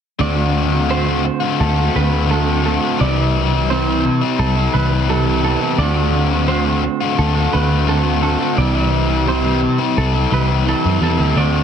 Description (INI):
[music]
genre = rock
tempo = 86 BPM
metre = 4/4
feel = straight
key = C lydian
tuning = A4 = 441 Hz
[part]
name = semi-hollow electric guitar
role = arpeggios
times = 0.2-11.6 s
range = A4 to D5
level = -25 LUFS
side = right 5 dB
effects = analog chorus, digital delay
[part]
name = clean electric guitar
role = riff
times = 0.2-11.6 s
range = C3 to F#4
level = -20 LUFS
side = right 10 dB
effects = reverse reverb
[part]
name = overdriven electric guitar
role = riff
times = 0.2-11.6 s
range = C3 to F#4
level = -19 LUFS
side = left 10 dB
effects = wide subtle chorus
[part]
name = vintage muted picked electric bass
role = bass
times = 0.2-11.6 s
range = C2 to F#2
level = -18 LUFS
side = equal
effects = none
[sound]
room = light reverb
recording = dense, heavily limited modern master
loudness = -14 LUFS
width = side -8 dB against mid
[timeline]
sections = 0.2-11.6 A section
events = none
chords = 0.2 D7; 3.0 Cmaj7; 5.8 D7; 8.6 Cmaj7